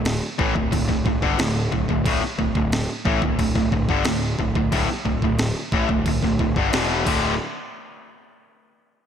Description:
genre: hard rock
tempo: 90 BPM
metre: 4/4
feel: straight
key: unclear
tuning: A4 = 443 Hz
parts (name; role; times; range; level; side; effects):
- distorted electric guitar; riff; 0.0-7.3 s; D2 to E3; -24 LUFS; left 8 dB; overdrive
- distorted electric guitar; riff; 0.0-7.3 s; D2 to E3; -26 LUFS; right 10 dB; distortion
- fuzz picked electric bass; bass; 0.0-7.4 s; D1 to A1; -27 LUFS; equal; overdrive
- breakbeat sampler-style drum kit; drums; 0.1-7.2 s; crash cymbal, kick drum, snare drum; -24 LUFS; equal; none
room: light reverb, digital ambience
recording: none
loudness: -19 LUFS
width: side -8 dB against mid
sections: 0.0-7.4 A section; 7.4-9.1 B section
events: drum fill 7.1-7.4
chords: 0.0 D5; 7.4 N.C.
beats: 0.06 0.72 1.39 | 2.05 2.72 3.38 4.05 | 4.72 5.39 6.06 6.72

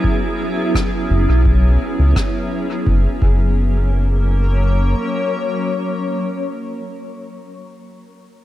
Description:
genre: ambient dub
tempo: 85 BPM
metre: 4/4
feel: swing 53% on 16ths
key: F# mixolydian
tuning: A4 = 440 Hz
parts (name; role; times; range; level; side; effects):
- granular cloud pad; sustained chords; 0.0-6.4 s; F#3 to C#5; -21 LUFS; left 1 dB; built-in reverb
- electronic kick drum; drums; 0.0-3.4 s; none; -19 LUFS; equal; none
- rim click; drums; 0.8-2.3 s; none; -30 LUFS; left 1 dB; dub echo
- round analog bass; bass; 1.1-4.9 s; F#1 to C#2; -14 LUFS; equal; none
room: light reverb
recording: none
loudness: -15 LUFS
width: side -14 dB against mid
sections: 0.0-2.9 A section; 2.9-5.7 B section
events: none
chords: 0.0 F#9sus4; 2.9 F#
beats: | 0.04 0.75 1.45 2.16 | 2.87 3.57 4.28 4.98

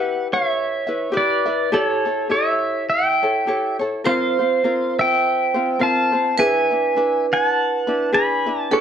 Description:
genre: Hawaiian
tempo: 103 BPM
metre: 4/4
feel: swing 57% on 8ths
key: unclear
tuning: A4 = 436 Hz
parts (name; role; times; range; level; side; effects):
- pedal steel guitar; melody; 0.0-8.8 s; A4 to B5; -19 LUFS; equal; none
- ukulele; accompaniment; 0.0-8.8 s; C4 to E5; -24 LUFS; left 3 dB; none
- vibraphone with hard mallets; second line; 4.1-8.8 s; A4 to C5; -22 LUFS; right 6 dB; plate reverb
room: moderate studio reverb, RT60 0.6 s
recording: dark, warm production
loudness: -17 LUFS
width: side -8 dB against mid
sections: 0.0-8.8 A section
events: none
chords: 0.0 Em; 1.7 A7; 4.0 Bbsus2; 6.4 E7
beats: 0.55 1.13 | 1.72 2.30 2.88 3.46 | 4.05 4.63 5.21 5.79 | 6.38 6.96 7.54 8.12 | 8.70

